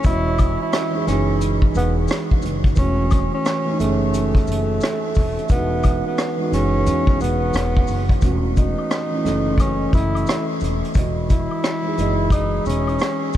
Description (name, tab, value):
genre	lo-fi hip hop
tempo	88 BPM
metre	4/4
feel	swing 64% on 16ths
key	E major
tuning	A4 = 435 Hz
part	mellow tine electric piano	accompaniment	0.0-13.4 s	E3 to D#5	-24 LUFS	right 2 dB	low-pass filter
part	upright bass	bass	0.0-13.4 s	E1 to E2	-23 LUFS	left 1 dB	none
part	vintage brush drum kit	drums	0.0-13.4 s	hi-hat, kick drum, rim click	-21 LUFS	equal	none
part	maracas and woodblock	percussion	0.0-13.4 s	none	-37 LUFS	left 6 dB	none
part	breathy tenor saxophone	melody	0.1-13.4 s	A3 to E4	-24 LUFS	equal	low-pass filter, analog delay
room	moderate huge ambient reverb, RT60 7.6 s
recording	dreamy mix soaked in reverb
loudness	-17 LUFS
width	side -12 dB against mid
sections	0.0-8.2 A section; 8.2-13.4 B section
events	none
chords	0.0 Emaj9; 2.8 F#m7/E; 5.5 Emaj9; 8.2 F#m7/E; 11.0 Emaj9